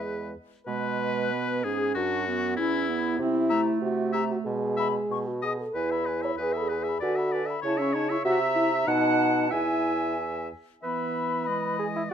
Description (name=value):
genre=quick classical-period movement for wind quintet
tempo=94 BPM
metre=2/4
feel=rubato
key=E major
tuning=A4 = 440 Hz
part: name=clear oboe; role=second line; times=0.0-12.1 s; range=E4 to F#5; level=-32 LUFS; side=left 5 dB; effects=none
part: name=mellow French horn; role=accompaniment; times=0.0-12.1 s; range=E3 to C#5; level=-29 LUFS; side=left 1 dB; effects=none
part: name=warm clarinet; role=accompaniment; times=0.0-12.1 s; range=G#3 to G#5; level=-31 LUFS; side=right 10 dB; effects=none
part: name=mellow bassoon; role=bass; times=0.0-12.1 s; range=E2 to B4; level=-32 LUFS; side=right 3 dB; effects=none
part: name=hollow concert flute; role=melody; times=0.7-12.1 s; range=E4 to D#6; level=-34 LUFS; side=left 11 dB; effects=none
room=light reverb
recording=close, detailed microphones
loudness=-24 LUFS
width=side -8 dB against mid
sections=0.7-10.8 A section; 10.8-12.1 A section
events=none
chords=0.0 E; 0.7 G#madd11; 2.0 Bm/F#; 2.6 C#m7/E; 3.2 C7; 4.5 E/B (rootless); 5.1 B; 5.8 E; 7.0 E7/D; 7.6 A/C#; 8.2 C7; 8.9 B7; 9.5 E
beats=0.01 | 0.67 1.32 | 1.95 2.58 | 3.20 3.83 | 4.47 5.11 | 5.75 6.39 | 7.02 7.64 | 8.25 8.87 | 9.52 10.18 | 10.84 11.48 | 12.11